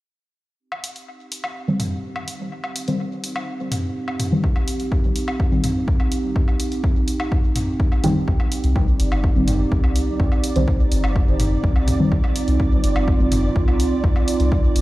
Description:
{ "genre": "dub techno", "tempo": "125 BPM", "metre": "4/4", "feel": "straight", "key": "C minor", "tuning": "A4 = 440 Hz", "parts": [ { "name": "warbly tape-like pad", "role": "sustained chords", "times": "1.6-14.8 s", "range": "C4 to G4", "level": "-25 LUFS", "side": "right 3 dB", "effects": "chorus, built-in reverb, sidechain pumping" }, { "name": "electronic woodblock and toms", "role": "percussion", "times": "0.7-14.3 s", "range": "none", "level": "-30 LUFS", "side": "left 1 dB", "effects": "overdrive, sidechain pumping on perc, sidechain pumping on toms, dub echo" }, { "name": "electronic hi-hat", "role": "drums", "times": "0.8-14.8 s", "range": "none", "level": "-31 LUFS", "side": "equal", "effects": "overdrive" }, { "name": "deep mellow chord stab", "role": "stabs", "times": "1.7-13.3 s", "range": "Eb3 to C4", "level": "-25 LUFS", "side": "left 1 dB", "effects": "chorus, phaser, cassette tape, sidechain pumping, dub echo" }, { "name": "electronic kick drum", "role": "drums", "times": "4.4-14.6 s", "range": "none", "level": "-20 LUFS", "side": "equal", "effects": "none" }, { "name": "soft dub sub bass", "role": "bass", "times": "8.3-14.8 s", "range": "G1 to C2", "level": "-20 LUFS", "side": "equal", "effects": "sidechain pumping" }, { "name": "flickering grainy texture", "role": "texture", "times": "9.0-14.8 s", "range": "D5", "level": "-32 LUFS", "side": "right 3 dB", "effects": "built-in reverb, sidechain pumping" } ], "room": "light reverb", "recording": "played on a big sound system in a bare room, large studio reverb", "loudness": "-18 LUFS", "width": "side -17 dB against mid", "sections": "0.6-8.3 A section; 8.3-14.8 B section", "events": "filter sweep on synth stab 0.6-8.3, 8.3-14.8; filter sweep on ambient pad 0.6-8.3", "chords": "0.6 Cm", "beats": "| 0.60 1.08 1.56 2.04 | 2.52 3.00 3.48 3.96 | 4.44 4.92 5.40 5.88 | 6.36 6.84 7.32 7.80 | 8.28 8.76 9.24 9.72 | 10.20 10.68 11.16 11.64 | 12.12 12.60 13.08 13.56 | 14.04 14.52" }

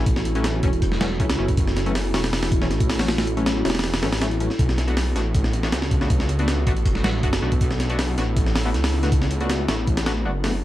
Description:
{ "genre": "drum and bass, jungle", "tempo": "159 BPM", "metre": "4/4", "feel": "straight", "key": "unclear", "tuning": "A4 = 440 Hz", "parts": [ { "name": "warbly tape-like pad", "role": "sustained chords", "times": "0.0-10.6 s", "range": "B3 to A4", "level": "-29 LUFS", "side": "right 1 dB", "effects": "chorus, built-in reverb" }, { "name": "band-passed chord stab", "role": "stabs", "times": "0.0-10.5 s", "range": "E3 to F#4", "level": "-28 LUFS", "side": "left 2 dB", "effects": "chorus, dub echo" }, { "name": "detuned saw bass", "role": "bass", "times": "0.0-10.6 s", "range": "E1 to C#2", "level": "-24 LUFS", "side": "equal", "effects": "none" }, { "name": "breakbeat sampler-style drum kit", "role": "drums", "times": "0.1-10.5 s", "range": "hi-hat, kick drum, snare drum", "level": "-22 LUFS", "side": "equal", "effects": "none" } ], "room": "digital ambience", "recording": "dry, gritty hardware recording, vinyl crackle", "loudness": "-19 LUFS", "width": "side -14 dB against mid", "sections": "0.0-10.6 A section", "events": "drop 0.0-10.6", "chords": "0.0 F#m7; 4.6 Bm7", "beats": "| 0.07 0.44 0.82 1.20 | 1.57 1.95 2.33 2.71 | 3.08 3.46 3.84 4.22 | 4.59 4.97 5.35 5.72 | 6.10 6.48 6.86 7.24 | 7.61 7.99 8.37 8.74 | 9.12 9.50 9.88 10.25" }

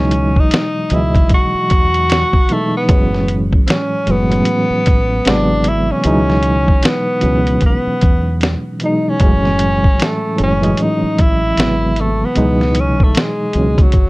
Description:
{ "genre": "lo-fi hip hop", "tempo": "76 BPM", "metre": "4/4", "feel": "swing 60% on 16ths", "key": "unclear", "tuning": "A4 = 440 Hz", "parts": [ { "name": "warm tenor saxophone", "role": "melody", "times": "0.0-14.1 s", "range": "F#3 to F#4", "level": "-18 LUFS", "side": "equal", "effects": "low-pass filter" }, { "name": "reed electric piano", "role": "accompaniment", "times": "0.0-14.0 s", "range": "G#2 to D#5", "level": "-17 LUFS", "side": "right 1 dB", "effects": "fast tremolo, cassette tape, low-pass filter" }, { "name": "deep dub fingered electric bass", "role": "bass", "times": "0.0-14.1 s", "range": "F#1 to E2", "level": "-18 LUFS", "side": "equal", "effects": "none" }, { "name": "lo-fi sampler-style drum kit", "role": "drums", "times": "0.1-14.1 s", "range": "hi-hat, kick drum, snare drum", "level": "-14 LUFS", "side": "equal", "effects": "none" } ], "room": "light reverb", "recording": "none", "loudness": "-12 LUFS", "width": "side -22 dB against mid", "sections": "0.0-14.1 A section", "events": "none", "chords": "0.0 C#m11; 2.9 F#m7; 5.3 G#7alt; 6.0 C#m11; 9.2 F#m7; 11.6 G#7alt; 12.4 C#m11", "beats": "0.52 1.31 2.10 | 2.89 3.68 4.47 5.26 | 6.04 6.83 7.62 8.41 | 9.20 9.99 10.78 11.57 | 12.36 13.15 13.94" }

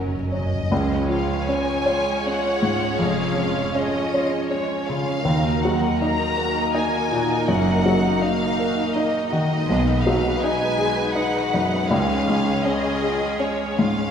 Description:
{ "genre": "classical, romantic movement for piano and orchestra", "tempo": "80 BPM", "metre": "3/4", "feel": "rubato", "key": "Db major", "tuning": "A4 = 441 Hz", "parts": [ { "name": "warm baby grand piano", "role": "melody", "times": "0.0-14.1 s", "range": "B1 to Db5", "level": "-23 LUFS", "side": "left 2 dB", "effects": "none" }, { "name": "warm studio violin section", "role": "melody", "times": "0.0-14.1 s", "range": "A#4 to Bb5", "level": "-27 LUFS", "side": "left 2 dB", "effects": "none" }, { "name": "warm studio violin section", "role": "second line", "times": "0.0-14.1 s", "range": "Ab3 to Db5", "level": "-28 LUFS", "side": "left 1 dB", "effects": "none" }, { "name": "dark studio viola section", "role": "accompaniment", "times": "0.0-14.1 s", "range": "F#3 to Eb4", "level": "-28 LUFS", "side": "right 4 dB", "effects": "none" }, { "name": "warm studio cello section", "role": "bass", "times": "0.0-12.5 s", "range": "Eb2 to Db3", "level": "-30 LUFS", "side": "right 1 dB", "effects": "none" }, { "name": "warm studio double bass section", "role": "bass", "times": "0.0-12.5 s", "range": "F1 to Eb2", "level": "-30 LUFS", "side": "right 3 dB", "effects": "none" }, { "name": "timpani", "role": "percussion", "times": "0.0-1.8 s", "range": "F#2 to Db3", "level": "-28 LUFS", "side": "right 1 dB", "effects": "none" }, { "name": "warm French horn section", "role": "sustained chords", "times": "0.7-14.0 s", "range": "G#3 to Gb4", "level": "-30 LUFS", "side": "equal", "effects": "none" } ], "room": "wet scoring stage reverb, RT60 1.6 s", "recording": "recorded in a church or concert hall", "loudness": "-19 LUFS", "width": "side -8 dB against mid", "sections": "0.7-14.1 A section", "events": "timpani fill 0.0-0.7", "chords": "0.0 F#; 0.7 Db; 3.0 Db/F; 5.3 Ebm; 7.5 Ebm/Gb; 9.7 G#m7/B; 11.9 C#", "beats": "| 0.71 1.48 2.25 | 3.00 3.75 4.50 | 5.25 6.01 6.75 | 7.49 8.22 8.95 | 9.68 10.42 11.16 | 11.90 12.65 13.41" }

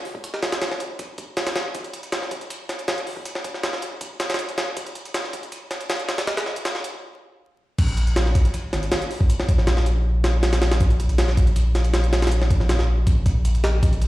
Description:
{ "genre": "drum and bass, jungle", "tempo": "159 BPM", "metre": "4/4", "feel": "straight", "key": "unclear", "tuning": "A4 = 438 Hz", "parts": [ { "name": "jungle sampler-style drum kit", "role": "drums", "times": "0.1-14.1 s", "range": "crash cymbal, hi-hat, kick drum, snare drum", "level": "-22 LUFS", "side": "equal", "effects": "high-pass filter on hats, high-pass filter on snare, high-pass filter on kick, high-pass filter on cymbals, high-pass filter on room" }, { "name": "saturated sub bass", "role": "bass", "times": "7.8-14.1 s", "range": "Ab1 to Bb1", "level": "-20 LUFS", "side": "equal", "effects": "none" } ], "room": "light reverb", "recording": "played on a big sound system in a bare room, stone room reverb, vinyl crackle", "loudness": "-20 LUFS", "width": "side -17 dB against mid", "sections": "0.0-7.8 A section; 7.8-14.1 B section", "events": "build-up 0.0-7.8; stop 7.0-7.8; drop 7.8-14.1", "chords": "none", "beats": "| 0.24 0.62 0.99 1.37 | 1.75 2.13 2.50 2.88 | 3.26 3.64 4.01 4.39 | 4.77 5.15 5.52 5.90 | 6.28 6.66 7.03 7.41 | 7.79 8.16 8.54 8.92 | 9.30 9.67 10.05 10.43 | 10.81 11.18 11.56 11.94 | 12.32 12.69 13.07 13.45 | 13.82" }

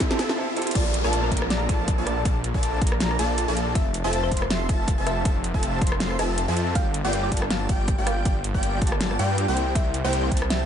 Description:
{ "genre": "future bass", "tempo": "160 BPM", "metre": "4/4", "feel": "swing 55% on 16ths, half-time", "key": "unclear", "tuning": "A4 = 440 Hz", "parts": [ { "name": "supersaw stab", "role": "riff", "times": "0.0-10.7 s", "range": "Bb3 to C6", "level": "-29 LUFS", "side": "equal", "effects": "sidechain pumping" }, { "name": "wide detuned saw bass", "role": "bass", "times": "0.0-10.7 s", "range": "F1 to G2", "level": "-26 LUFS", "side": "equal", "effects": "chorus, sidechain pumping, high-pass filter" }, { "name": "electronic kick drum", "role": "drums", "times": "0.0-10.4 s", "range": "none", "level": "-24 LUFS", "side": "equal", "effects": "overdrive" }, { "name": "pop drum kit", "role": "drums", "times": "0.0-10.6 s", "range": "crash cymbal, hi-hat, rim click, snare drum", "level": "-29 LUFS", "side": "equal", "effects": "overdrive" }, { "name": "riser and downlifter", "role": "sound effects", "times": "0.0-3.8 s", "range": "none", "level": "-33 LUFS", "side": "equal", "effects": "none" }, { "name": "felt-muted upright piano", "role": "accompaniment", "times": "0.1-0.7 s", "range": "C4 to A4", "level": "-38 LUFS", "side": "right 3 dB", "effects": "none" }, { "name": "thumb-piano-like synth pluck", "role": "melody", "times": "0.8-10.7 s", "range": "Bb4 to F5", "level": "-34 LUFS", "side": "right 1 dB", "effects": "chorus, phaser, vintage 12-bit sampler grit, sidechain pumping, dub echo" }, { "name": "airy dreamy lead", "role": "arpeggios", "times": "0.8-10.7 s", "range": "G5 to C6", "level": "-32 LUFS", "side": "left 1 dB", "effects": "chorus, sidechain pumping" } ], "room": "little or no reverb", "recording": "nothing above 10.9 kHz", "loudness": "-21 LUFS", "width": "side -9 dB against mid", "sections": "0.8-10.7 A section", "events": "drum fill 0.0-0.4, 0.6; riser 0.0-0.8; break 0.4-0.8; drop 0.8-10.7", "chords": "0.0 Fmaj7; 0.8 Bbmaj7; 3.8 Fmaj7; 6.8 Gm7; 9.6 C7", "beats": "0.00 0.38 | 0.75 1.13 1.50 1.88 | 2.25 2.63 3.00 3.38 | 3.75 4.13 4.50 4.88 | 5.25 5.63 6.00 6.38 | 6.75 7.13 7.50 7.88 | 8.25 8.63 9.00 9.38 | 9.75 10.13 10.50" }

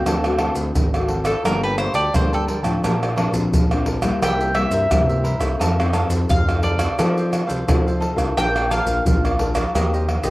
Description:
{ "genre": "samba and choro", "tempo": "87 BPM", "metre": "4/4", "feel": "straight", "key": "Bb major", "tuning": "A4 = 440 Hz", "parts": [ { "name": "mandolin", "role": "melody", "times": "0.0-9.7 s", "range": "A4 to G5", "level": "-24 LUFS", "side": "equal", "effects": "cassette tape, analog delay" }, { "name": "cavaquinho", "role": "accompaniment", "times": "0.0-10.3 s", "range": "D4 to A5", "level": "-29 LUFS", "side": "right 2 dB", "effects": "none" }, { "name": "nylon-string guitar", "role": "accompaniment", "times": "0.0-10.3 s", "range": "G2 to Bb4", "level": "-25 LUFS", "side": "left 2 dB", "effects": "none" }, { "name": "smooth gliding synth bass", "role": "bass", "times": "0.0-10.3 s", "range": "G1 to F3", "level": "-23 LUFS", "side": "equal", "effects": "none" }, { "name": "maracas, surdo, pandeiro and tamborim", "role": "percussion", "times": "0.1-10.3 s", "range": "none", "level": "-21 LUFS", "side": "right 1 dB", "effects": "none" } ], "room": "light reverb, studio reverb", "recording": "home recording on cassette", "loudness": "-17 LUFS", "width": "side -18 dB against mid", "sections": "0.0-10.3 A section", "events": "mandolin solo 0.0-10.3", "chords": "0.1 D7; 1.5 Gmadd9; 2.8 Bbadd9; 4.2 C7; 5.6 F7; 8.4 Bb; 9.7 Eb6", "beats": "| 0.07 0.76 1.45 2.15 | 2.84 3.53 4.22 4.91 | 5.60 6.29 6.99 7.68 | 8.37 9.06 9.75" }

